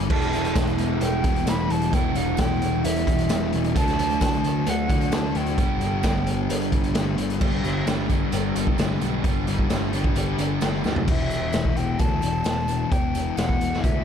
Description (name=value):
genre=rock, shoegaze and dream pop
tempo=131 BPM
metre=4/4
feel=straight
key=G major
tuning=A4 = 435 Hz
part: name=crunchy overdriven guitar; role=riff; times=0.0-11.1 s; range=G2 to G4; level=-28 LUFS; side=right 14 dB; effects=reverse reverb
part: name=thick fuzz guitar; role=riff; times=0.0-14.0 s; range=E2 to D4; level=-27 LUFS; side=left 12 dB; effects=distortion, analog chorus
part: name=fuzz picked electric bass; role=bass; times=0.0-14.0 s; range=E1 to D2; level=-27 LUFS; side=equal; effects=overdrive
part: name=bright silver concert flute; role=melody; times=0.1-7.0, 11.1-14.0 s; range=E5 to B5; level=-29 LUFS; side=right 2 dB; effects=tape echo
part: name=raw garage drum kit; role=drums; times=0.1-13.9 s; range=crash cymbal, hi-hat, kick drum, snare drum, toms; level=-25 LUFS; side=equal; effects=none
part: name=tambourine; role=percussion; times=0.6-13.9 s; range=none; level=-46 LUFS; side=right 22 dB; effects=none
room=small room ambience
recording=dark, warm production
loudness=-20 LUFS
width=side -8 dB against mid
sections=0.0-7.4 A section; 7.4-11.1 B section; 11.1-14.0 C section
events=drum fill 10.8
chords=0.1 Em; 3.8 D; 5.6 G; 11.1 Em7